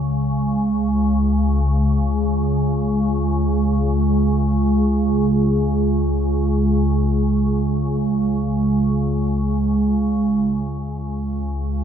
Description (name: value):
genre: world meditative, free-time meditation music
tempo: free time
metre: none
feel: none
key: unclear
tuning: A4 = 440 Hz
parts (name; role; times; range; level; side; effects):
- organ-like drone; solo; 0.0-11.8 s; C#2; -17 LUFS; equal; ensemble chorus, built-in reverb
room: wet cathedral reverb, RT60 5.4 s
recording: in a vast, echoing space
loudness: -17 LUFS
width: side -8 dB against mid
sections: 0.0-11.8 A section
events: none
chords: none